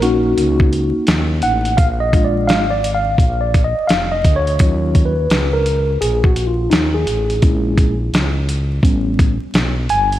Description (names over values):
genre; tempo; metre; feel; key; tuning
hip hop, jazz-hop; 85 BPM; 4/4; swing 64% on 16ths; unclear; A4 = 440 Hz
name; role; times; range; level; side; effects
mellow tine electric piano; accompaniment; 0.0-10.2 s; F#3 to G#5; -18 LUFS; equal; medium stereo tremolo
growling FM bass; bass; 0.0-10.2 s; E#1 to D#2; -19 LUFS; equal; none
dusty soul sampler-style drum kit; drums; 0.0-10.2 s; hi-hat, kick drum, snare drum; -16 LUFS; equal; none
room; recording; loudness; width
moderate lush hall reverb, RT60 2.7 s; dreamy mix soaked in reverb, vinyl crackle; -13 LUFS; side -13 dB against mid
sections
0.0-10.2 A section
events
tine electric piano solo 0.0-10.2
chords
0.0 Bmaj9 (rootless); 1.8 A#7; 4.6 D#m7; 7.4 A#m7b5; 8.8 A9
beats
0.37 1.07 | 1.78 2.49 3.19 3.90 | 4.60 5.31 6.02 6.72 | 7.43 8.13 8.84 9.55